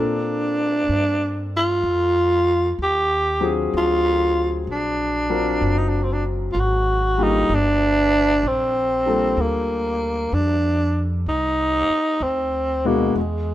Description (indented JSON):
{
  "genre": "jazz ballad",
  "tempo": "64 BPM",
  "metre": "4/4",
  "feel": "swing 67% on 8ths",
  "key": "Bb major",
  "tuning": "A4 = 440 Hz",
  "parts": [
    { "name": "growling tenor saxophone", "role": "melody", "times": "0.0-13.5 s", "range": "G#3 to G4", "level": "-20 LUFS", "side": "equal", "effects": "none" },
    { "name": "warm concert grand piano", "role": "accompaniment", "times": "0.0-13.2 s", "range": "Cb3 to A#4", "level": "-25 LUFS", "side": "left 3 dB", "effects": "none" },
    { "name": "upright bass", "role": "bass", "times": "0.0-13.5 s", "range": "F#1 to Bb2", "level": "-25 LUFS", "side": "equal", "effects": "none" }
  ],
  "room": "light reverb",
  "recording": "minimal, uncompressed stereo recording",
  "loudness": "-18 LUFS",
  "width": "side -14 dB against mid",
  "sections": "0.0-13.5 A section",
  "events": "none",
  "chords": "0.0 Bbmaj7; 3.7 D7alt; 7.5 Gm9; 11.3 Cm"
}